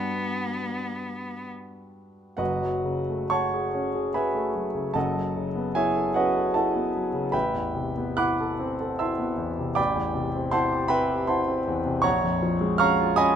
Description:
classical, impressionist duo for cello and grand piano; 62-80 BPM; 3/4; rubato; A4 = 440 Hz
rich cello; melody; 0.0-1.5 s; B3; -31 LUFS; left 1 dB
warm concert grand piano; accompaniment; 0.0-13.4 s; F#1 to F#6; -23 LUFS; equal
light reverb; -23 LUFS; side -8 dB against mid
0.0-2.4 A section; 2.4-13.4 B section
0.0 Gmaj7; 2.4 A69/F#; 7.3 C69/A; 12.0 A#m7

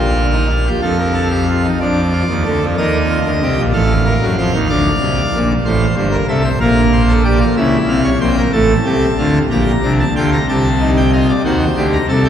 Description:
classical, baroque-style 3-part fugue for pipe organ; 62 BPM (dotted quarters); 6/8; straight; A4 = 441 Hz
pipe organ, full organ; solo; 0.0-12.3 s; G1 to Bb5; -12 LUFS; equal
wet cathedral reverb, RT60 5.8 s; heard from further back in the room; -12 LUFS; side -9 dB against mid
0.0-1.8 A section; 1.8-9.5 B section; 9.5-12.3 C section
0.0 Fsus4/Bb; 0.8 F; 1.8 Dm; 2.8 Cm7/Eb; 3.7 Adim7; 4.7 Bb; 5.7 F; 6.6 Gm7/Bb; 7.6 Edim7; 8.5 F/A; 9.5 Gm/Bb; 10.5 Am7b5/C; 11.4 F#dim7

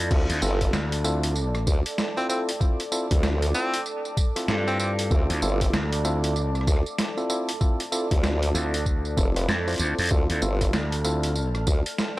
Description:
glitch hop; 96 BPM; 4/4; swing 61% on 16ths; D minor; A4 = 441 Hz
dark analog pad; sustained chords; 0.0-12.2 s; A4 to F6; -33 LUFS; right 1 dB; chorus, vintage 12-bit sampler grit, sidechain pumping
tine electric piano; stabs; 0.0-11.3 s; C4 to C5; -31 LUFS; equal; sidechain pumping, tape echo
gritty slap bass; bass; 0.0-11.7 s; D2 to G2; -26 LUFS; equal; overdrive
formant-sweep wobble bass; bass; 0.1-11.8 s; F1 to D2; -24 LUFS; equal; chorus, tube saturation
boom bap sampler-style drum kit; drums; 0.1-12.1 s; crash cymbal, hi-hat, rim click, snare drum, tambourine; -29 LUFS; right 1 dB; overdrive
electronic kick drum; drums; 0.1-11.8 s; -23 LUFS; equal; overdrive
edgy tenor saxophone; melody; 2.2-4.9, 12.2 s; C4; -31 LUFS; equal; vintage 12-bit sampler grit, tape echo
little or no reverb; dry, gritty hardware recording; -22 LUFS; side -18 dB against mid
0.0-12.2 A section
0.0 Dm7

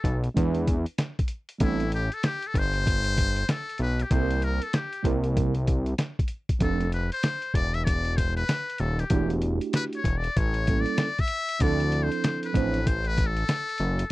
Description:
hip hop, jazz-hop; 96 BPM; 4/4; swing 64% on 16ths; A4 = 440 Hz
trumpet with metal mute; melody; 0.0-14.1 s; E4 to E5; -30 LUFS; left 3 dB
fat analog bass; bass; 0.0-14.0 s; Eb1 to E2; -26 LUFS; equal
lo-fi sampler-style drum kit; drums; 0.0-14.1 s; hi-hat, kick drum, snare drum; -26 LUFS; equal
mellow tine electric piano; accompaniment; 0.3-12.8 s; F3 to C5; -28 LUFS; right 5 dB; slow stereo tremolo
little or no reverb; dry, close 1970s-style studio recording; -24 LUFS; side -18 dB against mid
0.0-14.1 A section
muted trumpet solo 0.0-14.1
0.4 E7; 1.6 Am9; 4.1 C7; 6.6 F6; 9.1 Em11; 10.4 A7b9; 11.6 Dm9

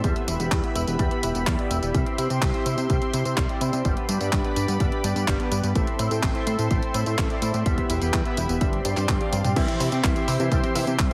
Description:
italo disco; 126 BPM; 4/4; straight; A4 = 439 Hz
lush unison pad; sustained chords; 0.0-11.1 s; G4 to C6; -33 LUFS; equal; chorus
electric guitar with an envelope filter; arpeggios; 0.0-11.1 s; G3 to E4; -36 LUFS; equal; ensemble chorus, low-pass filter, delay
analog synth brass; stabs; 0.0-11.1 s; B3 to G5; -33 LUFS; equal; chorus, delay
fat analog bass; bass; 0.0-11.1 s; E1 to C3; -29 LUFS; equal
clean 12-bit digital drum machine; drums; 0.0-11.1 s; crash cymbal, handclaps, hi-hat, tambourine, toms; -33 LUFS; equal
electronic kick drum; drums; 0.0-11.1 s; -28 LUFS; equal
clear grand piano; melody; 9.6-11.0 s; E3 to E4; -32 LUFS; equal; delay
moderate plate reverb, RT60 1.2 s; heavily compressed radio sound, multiband compression; -24 LUFS; mono
0.0-9.6 A section; 9.6-11.1 B section
filter sweep on analog polysynth 0.0-9.6; drum fill 9.1-9.6
0.0 Em; 1.9 C; 3.9 G; 5.8 Am; 7.7 Em; 8.6 Gsus4; 9.6 C

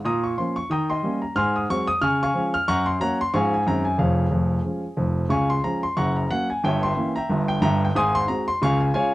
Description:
jazz, stride piano; 182 BPM; 4/4; swing 58% on 8ths; Db major; A4 = 440 Hz
warm grand piano; solo; 0.0-9.1 s; F1 to F6; -20 LUFS; equal
moderate club reverb, RT60 0.6 s; -20 LUFS; side -17 dB against mid
0.0-5.3 A section; 5.3-9.1 A section
0.1 Bbm; 0.7 Eb7; 1.4 Ab7; 2.0 Db; 2.7 Gb; 3.3 Db/Ab; 3.7 Ab7/Gb; 4.0 Db/F; 5.3 Db; 6.0 Gb; 6.6 Gdim7; 7.9 Ab7; 8.6 Db

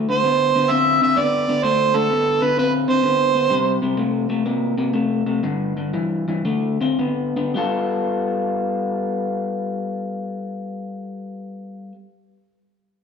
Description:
blues; 103-129 BPM; 4/4; swing 67% on 8ths; G mixolydian; A4 = 440 Hz
electric guitar through a small old amp; riff; 0.0-12.0 s; G2 to A4; -21 LUFS; left 3 dB; slapback echo
overdriven harmonica; melody; 0.1-3.8 s; A4 to E5; -18 LUFS; right 4 dB; slapback echo, analog delay
light reverb, small room ambience; live gig heard through the venue's PA, club reverb; -18 LUFS; side -6 dB against mid
0.0-7.5 A section; 7.5-12.2 B section
slowing down 3.5-7.5
0.0 D5; 3.5 C5; 5.4 G5; 6.4 D5; 7.5 G9

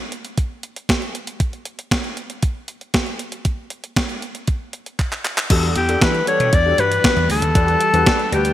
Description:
early-eighties boogie funk; 117 BPM; 4/4; straight; E dorian; A4 = 440 Hz
crisp 8-bit digital drum machine; drums; 0.1-8.5 s; crash cymbal, handclaps, hi-hat, kick drum, snare drum; -19 LUFS; equal; overdrive, gated reverb
dark baby grand piano; accompaniment; 5.5-8.5 s; D4 to B4; -25 LUFS; left 3 dB; ensemble chorus
string machine, violins; sustained chords; 5.5-8.5 s; E3 to F#5; -27 LUFS; right 1 dB; ensemble chorus
vintage slap bass; bass; 5.5-8.5 s; D2 to E3; -20 LUFS; equal
breathy alto saxophone; melody; 5.8-8.5 s; G4 to D5; -17 LUFS; left 2 dB
light reverb, digital ambience; bright 1980s-style digital production; -17 LUFS; side -13 dB against mid
0.0-5.5 A section; 5.5-8.5 B section
drum fill 5.0-5.5
0.0 N.C.; 5.5 Em11

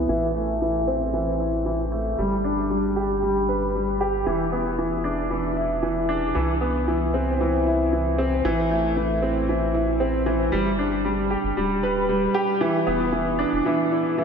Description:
piano and strings electronica; 115 BPM; 4/4; straight; G major; A4 = 441 Hz
clear grand piano; riff; 0.0-14.2 s; E3 to B4; -21 LUFS; equal; analog chorus, ping-pong delay
round analog bass; bass; 0.0-13.6 s; D1 to C2; -29 LUFS; equal
wet lush hall reverb, RT60 2.7 s; dreamy mix soaked in reverb, low-pass filter; -21 LUFS; side -6 dB against mid
0.0-10.5 A section; 10.5-14.2 B section
filter sweep 0.0-10.5; build-up 10.5-14.2
0.1 Am; 2.2 G; 4.3 E5; 6.4 Cmaj7; 8.4 Am; 10.5 G; 12.6 E5

